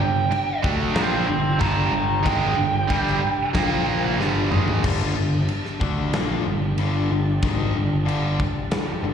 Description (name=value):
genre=hard rock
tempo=93 BPM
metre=4/4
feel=straight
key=G minor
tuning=A4 = 440 Hz
part: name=lead guitar through a small cranked amp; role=melody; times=0.0-4.2 s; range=G5 to C6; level=-24 LUFS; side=right 3 dB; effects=overdrive, slapback echo
part: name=sweeping resonant pad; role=sustained chords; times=0.0-9.1 s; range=Bb3 to Bb5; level=-34 LUFS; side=equal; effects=chorus
part: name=overdriven electric guitar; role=riff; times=0.0-9.1 s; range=G2 to D4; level=-27 LUFS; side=left 10 dB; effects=slapback echo
part: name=tight distorted guitar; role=riff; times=0.0-4.8 s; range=G2 to D4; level=-26 LUFS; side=right 9 dB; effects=distortion, slapback echo
part: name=fuzz picked electric bass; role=bass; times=0.0-9.1 s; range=G1 to D2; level=-24 LUFS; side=right 1 dB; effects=overdrive
part: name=big rock drum kit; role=drums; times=0.3-8.9 s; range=crash cymbal, kick drum, snare drum, toms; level=-26 LUFS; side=equal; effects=none
room=studio reverb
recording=live gig heard through the venue's PA, recital hall reverb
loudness=-19 LUFS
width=side -8 dB against mid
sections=0.0-4.8 A section; 4.8-9.1 B section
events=lead electric guitar solo 0.0-4.8; drum fill 4.2-4.8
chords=0.0 Gm; 3.5 Bb5; 4.2 G5; 4.8 Gm